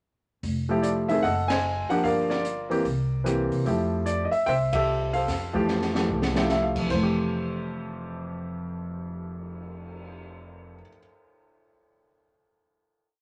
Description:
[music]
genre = jazz piano trio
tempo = 148 BPM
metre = 4/4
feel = swing 65% on 8ths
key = F major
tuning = A4 = 440 Hz
[part]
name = upright bass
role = bass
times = 0.4-10.8 s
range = F1 to C3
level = -34 LUFS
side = equal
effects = none
[part]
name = open jazz drum kit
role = drums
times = 0.4-10.1 s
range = crash cymbal, cymbal swell, hi-hat, kick drum, ride cymbal, rim click, snare drum, toms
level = -36 LUFS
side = equal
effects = none
[part]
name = clear grand piano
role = melody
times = 0.7-11.0 s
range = F2 to Ab5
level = -28 LUFS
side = equal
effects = none
[sound]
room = moderate studio reverb, RT60 0.7 s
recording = none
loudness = -26 LUFS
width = mono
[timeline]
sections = 0.4-6.9 A section; 6.9-10.1 final chord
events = band accent 1.4, 4.7; drum fill 5.7-6.5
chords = 0.4 Fmaj9; 1.2 F#dim7; 2.0 Gm7; 2.8 C7; 3.7 Fmaj9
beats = | 0.42 0.83 1.23 1.64 | 2.04 2.44 2.85 3.25 | 3.66 4.06 4.47 4.87 | 5.28 5.68 6.09 6.49 | 6.90 7.31 7.71 8.12 | 8.52 8.93 9.34 9.74

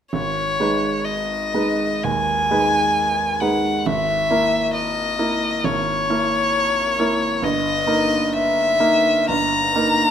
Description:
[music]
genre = classical, romantic duo for violin and grand piano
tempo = 59-70 BPM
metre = 4/4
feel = rubato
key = G# minor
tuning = A4 = 440 Hz
[part]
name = rich violin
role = melody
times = 0.1-10.1 s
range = C#5 to A#5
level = -19 LUFS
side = left 2 dB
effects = none
[part]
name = bright concert grand piano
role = accompaniment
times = 0.1-10.1 s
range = G1 to B4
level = -22 LUFS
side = right 3 dB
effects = none
[sound]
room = moderate stone room reverb, RT60 1.3 s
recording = none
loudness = -17 LUFS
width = side -8 dB against mid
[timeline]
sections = 0.1-10.1 A section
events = none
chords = 0.1 G#m; 3.9 A#m7b5/G#; 7.4 D#/G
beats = | 0.13 1.06 2.04 2.96 | 3.86 4.74 5.64 6.55 | 7.43 8.32 9.29

